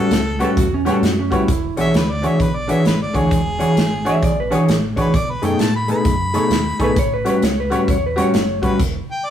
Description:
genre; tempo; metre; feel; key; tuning
electric blues shuffle; 131 BPM; 4/4; swing 63% on 8ths; E mixolydian; A4 = 440 Hz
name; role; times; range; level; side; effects
warm harmonica; melody; 0.0-9.3 s; G#4 to B5; -24 LUFS; equal; none
clear grand piano; accompaniment; 0.0-8.7 s; D4 to C#5; -24 LUFS; equal; none
mellow electric guitar; riff; 0.0-8.8 s; A2 to C#5; -19 LUFS; left 1 dB; tremolo
fingered electric bass; bass; 0.1-9.0 s; E1 to A2; -26 LUFS; equal; none
natural country drum kit; drums; 0.1-8.9 s; crash cymbal, hi-hat, kick drum, snare drum; -21 LUFS; equal; none
electric slide guitar; second line; 0.4-8.6 s; C#4 to E5; -22 LUFS; right 2 dB; none
room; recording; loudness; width
light reverb; rough rehearsal-room recording; -15 LUFS; side -10 dB against mid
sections
0.0-9.3 A section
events
stop 8.8-9.3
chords
0.0 A13; 1.5 E13; 5.1 B13; 7.0 A13; 8.8 Em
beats
0.11 0.57 1.03 | 1.49 1.94 2.40 2.86 | 3.31 3.77 4.23 4.68 | 5.14 5.59 6.05 6.51 | 6.96 7.42 7.88 8.33 | 8.79 9.25

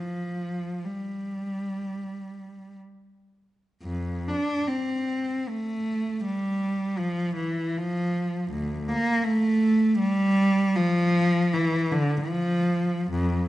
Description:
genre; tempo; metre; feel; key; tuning
classical, free, expressive piece for unaccompanied cello; 48-82 BPM; 3/4; rubato; F major; A4 = 440 Hz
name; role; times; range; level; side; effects
warm cello; solo; 0.0-13.5 s; D2 to D4; -24 LUFS; equal; none
room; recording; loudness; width
moderate recital hall reverb, RT60 1.6 s; nothing above 10.8 kHz; -23 LUFS; side -15 dB against mid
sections
0.0-3.8 A section; 3.8-13.5 B section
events
none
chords
none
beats
| 0.84 1.81 2.75 | 3.84 4.69 5.49 | 6.26 7.01 7.78 | 8.53 9.27 10.01 | 10.77 11.54 12.29 | 13.11

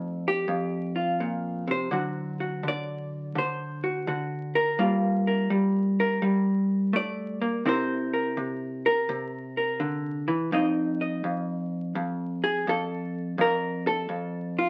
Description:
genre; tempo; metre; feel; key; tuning
solo jazz; 84 BPM; 4/4; swing 66% on 8ths; F mixolydian; A4 = 440 Hz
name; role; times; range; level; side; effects
hollow-body jazz guitar; solo; 0.0-14.7 s; F2 to Eb5; -27 LUFS; equal; none
room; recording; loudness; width
wet studio reverb, RT60 0.6 s; very old 78 rpm record, vinyl crackle; -27 LUFS; mono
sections
0.0-14.7 A section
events
hollow-body jazz guitar solo 0.0-14.7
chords
0.0 F7; 1.9 D7; 4.8 Gm7; 7.7 C7; 10.5 F7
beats
0.49 1.20 | 1.92 2.63 3.35 4.07 | 4.79 5.50 6.22 6.93 | 7.65 8.37 9.08 9.80 | 10.52 11.23 11.95 12.66 | 13.38 14.10

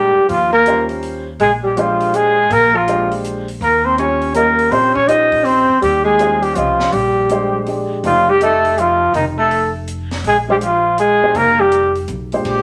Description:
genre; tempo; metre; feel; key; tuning
jazz, small-group swing and bop; 163 BPM; 3/4; swing 64% on 8ths; unclear; A4 = 440 Hz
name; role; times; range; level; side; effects
breathy trumpet; melody; 0.0-12.6 s; Eb4 to Eb5; -17 LUFS; equal; none
mellow alto saxophone; second line; 0.0-12.0 s; Eb3 to Eb4; -20 LUFS; equal; none
warm upright piano; accompaniment; 0.0-12.6 s; Bb2 to Eb5; -24 LUFS; equal; none
upright bass; bass; 0.0-12.6 s; F1 to Eb2; -28 LUFS; equal; none
compact cocktail drum kit; drums; 0.3-12.6 s; hi-hat, kick drum, ride cymbal, snare drum; -36 LUFS; equal; none
room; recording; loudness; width
wet studio reverb, RT60 0.9 s; none; -15 LUFS; mono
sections
0.0-12.5 A section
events
none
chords
0.3 Eb13; 1.4 Bb13; 3.6 Eb13; 6.9 Bb13; 8.0 F9; 10.2 Bb13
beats
| 0.30 0.67 1.03 | 1.40 1.77 2.14 | 2.51 2.88 3.25 | 3.61 3.98 4.35 | 4.72 5.09 5.46 | 5.83 6.19 6.56 | 6.93 7.30 7.67 | 8.04 8.40 8.77 | 9.14 9.51 9.88 | 10.24 10.61 10.98 | 11.35 11.72 12.09 | 12.45

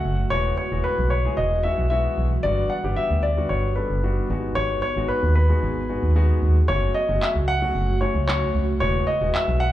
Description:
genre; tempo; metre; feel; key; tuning
dance-pop; 113 BPM; 4/4; straight; unclear; A4 = 440 Hz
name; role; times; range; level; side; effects
warm grand piano; melody; 0.0-9.7 s; B4 to F#5; -24 LUFS; left 1 dB; slapback echo, ping-pong delay
warm concert grand piano; accompaniment; 0.0-9.6 s; F#3 to A4; -29 LUFS; left 2 dB; slapback echo
ethereal airy pad; sustained chords; 0.0-9.7 s; C#3 to G#4; -33 LUFS; right 3 dB; ensemble chorus, built-in reverb
organ-like FM bass; bass; 0.1-9.7 s; E1 to D#2; -22 LUFS; equal; none
electronic handclaps; drums; 7.2-9.5 s; none; -31 LUFS; equal; slapback echo
room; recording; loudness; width
studio ambience; live gig heard through the venue's PA, club reverb; -20 LUFS; side -13 dB against mid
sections
0.0-9.7 A section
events
none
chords
0.3 Eadd9; 2.4 Gmaj7; 4.3 G#m7; 6.7 F#m; 8.8 Eadd9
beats
| 0.32 0.85 1.38 1.91 | 2.44 2.98 3.51 4.04 | 4.57 5.10 5.63 6.16 | 6.69 7.22 7.75 8.29 | 8.82 9.35

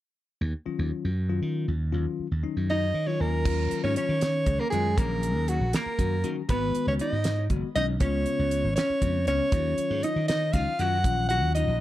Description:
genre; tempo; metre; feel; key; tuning
electric jazz fusion; 79 BPM (dotted quarters); 6/8; straight; Eb minor; A4 = 440 Hz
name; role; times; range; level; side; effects
slap bass; bass; 0.4-11.8 s; Gb1 to Eb3; -28 LUFS; right 1 dB; none
bell-like tine electric piano; accompaniment; 0.7-11.7 s; Db3 to Ab5; -32 LUFS; left 7 dB; none
bright soprano saxophone; melody; 2.7-11.8 s; Gb4 to Gb5; -28 LUFS; equal; none
vintage hollow-body jazz guitar; second line; 2.7-11.8 s; Gb3 to Gb4; -33 LUFS; right 1 dB; none
damped 70s drum kit; drums; 3.5-11.7 s; crash cymbal, hi-hat, kick drum, snare drum; -29 LUFS; right 1 dB; none
room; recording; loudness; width
light reverb, small room ambience; dark, warm production; -24 LUFS; side -14 dB against mid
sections
0.4-3.5 A section; 3.5-11.8 B section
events
tine electric piano fill 2.7-3.5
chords
0.4 Ebm9; 6.5 Abm7; 8.0 Db7; 9.5 Ebm9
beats
| 0.41 1.17 | 1.93 2.69 | 3.45 4.21 | 4.97 5.74 | 6.49 7.25 | 8.01 8.77 | 9.53 10.29 | 11.05

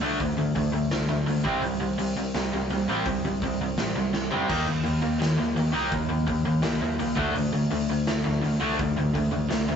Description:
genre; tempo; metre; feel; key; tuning
punk rock; 168 BPM; 4/4; straight; unclear; A4 = 441 Hz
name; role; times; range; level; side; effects
raw garage guitar; riff; 0.0-9.8 s; C3 to Eb4; -25 LUFS; equal; overdrive
picked electric bass; bass; 0.0-9.8 s; A1 to G2; -31 LUFS; equal; none
raw garage drum kit; drums; 0.2-9.6 s; crash cymbal, hi-hat, kick drum, snare drum, toms; -31 LUFS; equal; none
room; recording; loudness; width
light reverb; rough rehearsal-room recording, nothing above 7.9 kHz; -23 LUFS; side -7 dB against mid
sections
0.0-9.8 A section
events
half time 0.0-9.8; drum fill 4.1-4.5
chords
0.0 D5; 1.5 C5; 4.5 Eb5; 7.2 D5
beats
| 0.20 0.56 0.92 1.27 | 1.63 1.99 2.35 2.70 | 3.06 3.42 3.78 4.13 | 4.49 4.85 5.21 5.57 | 5.92 6.28 6.64 7.00 | 7.36 7.71 8.07 8.43 | 8.79 9.15 9.50

